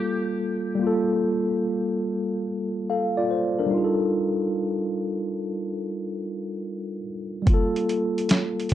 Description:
lo-fi hip hop; 72 BPM; 4/4; swing 65% on 16ths; G minor; A4 = 440 Hz
tine electric piano; accompaniment; 0.0-8.7 s; G3 to F5; -24 LUFS; equal; medium stereo tremolo, cassette tape
boom bap sampler-style drum kit; drums; 7.5-8.7 s; hi-hat, kick drum, snare drum; -20 LUFS; equal; overdrive
moderate studio reverb, RT60 0.5 s; dark, warm production; -23 LUFS; side -12 dB against mid
0.8-8.7 A section
break 0.0-0.8
0.0 Gm9; 3.7 F9; 7.5 Gm9
| 0.81 1.64 2.47 3.31 | 4.14 4.97 5.80 6.64 | 7.47 8.30

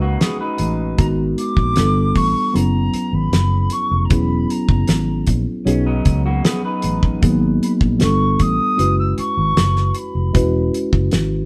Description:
lush 1970s-style soul; 77 BPM; 4/4; straight; A4 = 442 Hz
tine electric piano; accompaniment; 0.0-11.5 s; F#3 to B4; -23 LUFS; equal; phaser
electric guitar through a small old amp; riff; 0.0-1.0, 5.7-7.2 s; F#3 to B4; -28 LUFS; equal; spring reverb
vintage muted fingered electric bass; bass; 0.0-11.5 s; E1 to C#2; -21 LUFS; equal
damped 70s drum kit; drums; 0.2-11.3 s; hi-hat, kick drum, snare drum; -20 LUFS; equal
silver concert flute; melody; 1.0-10.7 s; A#5 to E6; -24 LUFS; equal
light reverb; band playing live in one room; -17 LUFS; mono
0.0-11.5 A section
0.0 B69; 1.0 G#m9; 1.8 G9; 2.5 F#7sus4; 4.1 E6; 5.7 B69; 7.2 G#m9; 8.0 G9; 8.8 F#7sus4; 10.3 E6
0.20 | 0.98 1.76 2.54 3.32 | 4.11 4.88 5.67 6.45 | 7.22 8.01 8.79 9.56 | 10.34 11.12

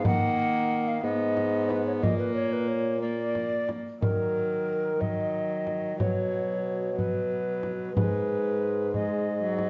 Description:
classical, renaissance-style consort dance; 61 BPM (dotted quarters); 6/8; straight; Eb minor; A4 = 440 Hz
mellow hollow tenor recorder; melody; 0.0-9.7 s; Bb4 to Gb5; -32 LUFS; equal
warm viola; accompaniment; 0.0-9.7 s; F#3 to Cb4; -34 LUFS; equal
warm bassoon; bass; 0.0-9.7 s; Ab2 to Eb3; -34 LUFS; equal
frame drum; percussion; 0.0-9.7 s; -32 LUFS; equal
moderate recital hall reverb, RT60 1.5 s; dark, warm production, nothing above 7.7 kHz; -28 LUFS; mono
0.0-4.0 A section; 4.0-9.7 B section
0.1 Ebm; 1.0 Abm; 2.0 Bb; 4.0 Ebm; 6.0 B5; 8.0 Abm
| 0.06 1.04 | 2.03 3.02 | 4.01 5.01 | 6.00 6.98 | 7.96 8.94

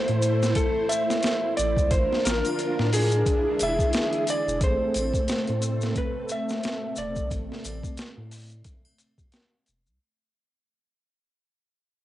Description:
trip hop; 89 BPM; 4/4; swing 57% on 16ths; A harmonic minor; A4 = 443 Hz
electric slide guitar; melody; 0.0-7.3 s; G#4 to E5; -27 LUFS; equal; cassette tape, dub echo
string machine, cellos; sustained chords; 0.0-10.0 s; A3 to C5; -29 LUFS; equal; ensemble chorus, cassette tape
warm sub bass; bass; 0.1-10.0 s; E1 to A2; -28 LUFS; equal
boom bap sampler-style drum kit; drums; 0.1-9.8 s; hi-hat, kick drum, snare drum; -28 LUFS; equal; overdrive, cassette tape
maracas and triangle; percussion; 0.2-10.0 s; -36 LUFS; left 3 dB
light reverb, digital ambience; home recording on cassette, nothing above 11.0 kHz; -22 LUFS; side -14 dB against mid
0.0-4.6 A section; 4.6-10.0 B section
fade-out 4.6-10.0
0.0 Am; 1.9 Bbmaj7/A; 3.3 E7; 4.6 Am
0.56 1.24 | 1.91 2.58 3.26 3.93 | 4.61 5.28 5.95 6.63 | 7.30 7.98 8.65 9.32

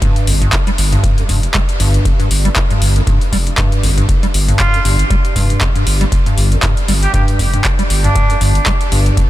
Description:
acid house; 118 BPM; 4/4; swing 56% on 16ths; A4 = 440 Hz
acid bass, square; riff; 0.0-9.3 s; F2 to G3; -17 LUFS; equal; overdrive, wide subtle chorus, tape echo
electro analog drum machine; drums; 0.0-9.3 s; handclaps, hi-hat; -19 LUFS; left 1 dB
electronic kick drum; drums; 0.0-9.3 s; -16 LUFS; equal
airy breathy pad; texture; 0.0-9.3 s; D4 to D5; -30 LUFS; right 1 dB; chorus, phaser, sidechain pumping
saturated sub bass; bass; 0.3-9.1 s; F1 to G1; -15 LUFS; equal; tube saturation, sidechain pumping
trumpet with straight mute; melody; 4.6-8.4 s; D4 to G4; -22 LUFS; right 2 dB; diffuse ambient delay
light reverb; -11 LUFS; side -15 dB against mid
0.0-9.3 A section
fade-in on analog synth pad 0.0-9.3
0.0 G5
| 0.02 0.53 1.04 1.54 | 2.05 2.56 3.07 3.58 | 4.09 4.60 5.11 5.61 | 6.12 6.63 7.14 7.65 | 8.15 8.66 9.17

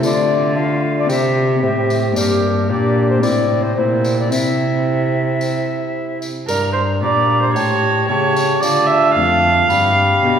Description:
classical, renaissance-style consort dance; 112 BPM; 4/4; straight; G dorian; A4 = 440 Hz
mellow alto recorder; melody; 0.0-10.4 s; Bb4 to B5; -22 LUFS; left 4 dB
warm viola; second line; 0.0-10.4 s; E4 to F5; -18 LUFS; right 3 dB
Celtic harp; accompaniment; 0.0-10.4 s; F2 to G4; -23 LUFS; left 6 dB
dark bassoon; accompaniment; 0.0-10.4 s; A3 to G4; -23 LUFS; left 1 dB
rich cello; bass; 0.0-10.4 s; F2 to D3; -20 LUFS; right 1 dB
tambourine; percussion; 0.0-9.9 s; -30 LUFS; left 2 dB
wet concert hall reverb, RT60 2.2 s; recorded in a church or concert hall; -14 LUFS; side -8 dB against mid
0.0-6.5 A section; 6.5-10.4 A section
0.0 Dm; 1.1 C; 2.2 Gm; 3.2 Am; 4.3 C; 6.5 Gm; 7.6 A7; 8.6 Dm; 9.7 G7
| 0.03 0.56 1.09 1.63 | 2.16 2.70 3.23 3.77 | 4.31 4.86 5.40 5.94 | 6.48 7.02 7.56 8.09 | 8.63 9.16 9.70 10.23

